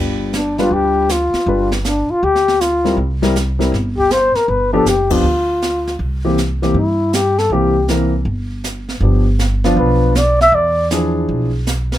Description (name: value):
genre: jazz, small-group swing and bop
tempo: 159 BPM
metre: 4/4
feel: swing 65% on 8ths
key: G mixolydian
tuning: A4 = 440 Hz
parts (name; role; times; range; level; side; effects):
- warm grand piano; accompaniment; 0.0-11.5 s; E3 to B4; -18 LUFS; left 1 dB; none
- upright bass; bass; 0.0-12.0 s; F#1 to G2; -19 LUFS; right 1 dB; none
- jazz brush drum kit; drums; 0.3-12.0 s; brushed snare drum, hi-hat, kick drum, ride cymbal, snare drum; -24 LUFS; right 2 dB; none
- breathy flugelhorn; melody; 0.4-10.9 s; D4 to E5; -15 LUFS; left 1 dB; none
room: light reverb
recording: close, detailed microphones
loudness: -13 LUFS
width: side -13 dB against mid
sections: 0.0-12.0 A section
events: band accent 5.0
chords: 0.0 G7; 3.0 C7; 4.5 G7; 6.0 C7; 9.0 G7; 10.5 E7b9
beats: 0.34 0.71 1.09 | 1.47 1.84 2.22 2.60 | 2.98 3.35 3.73 4.11 | 4.48 4.86 5.24 5.62 | 5.99 6.37 6.75 7.13 | 7.50 7.88 8.26 8.64 | 9.02 9.39 9.77 10.15 | 10.53 10.91 11.29 11.66